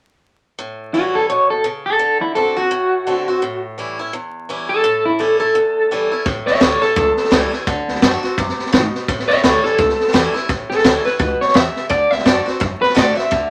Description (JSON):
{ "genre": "rockabilly", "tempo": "170 BPM", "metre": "4/4", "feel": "swing 59% on 8ths", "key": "A major", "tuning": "A4 = 440 Hz", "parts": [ { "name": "picked swing-style acoustic guitar", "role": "accompaniment", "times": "0.6-13.5 s", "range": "E2 to F#4", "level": "-26 LUFS", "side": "equal", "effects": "none" }, { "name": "electric guitar at the edge of break-up", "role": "melody", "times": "0.9-13.5 s", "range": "E4 to E5", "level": "-18 LUFS", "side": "equal", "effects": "tremolo" }, { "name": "upright bass", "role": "bass", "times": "6.3-13.4 s", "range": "G#1 to A2", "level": "-29 LUFS", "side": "equal", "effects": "none" }, { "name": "vintage drum kit", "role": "drums", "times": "6.3-13.4 s", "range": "hi-hat, kick drum, snare drum", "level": "-19 LUFS", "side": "equal", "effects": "none" } ], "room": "light reverb", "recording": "vinyl crackle", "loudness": "-17 LUFS", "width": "mono", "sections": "0.6-6.3 A section; 6.3-13.5 B section", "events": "none", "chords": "0.6 A7; 2.0 D7; 3.4 A7; 7.7 D7; 9.1 A7; 11.9 D7", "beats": "| 0.58 0.94 1.29 1.65 | 2.00 2.36 2.71 3.07 | 3.42 3.78 4.13 4.49 | 4.84 5.20 5.55 5.90 | 6.26 6.61 6.96 7.32 | 7.67 8.02 8.38 8.73 | 9.08 9.43 9.79 10.14 | 10.49 10.85 11.20 11.55 | 11.90 12.26 12.61 12.96 | 13.31" }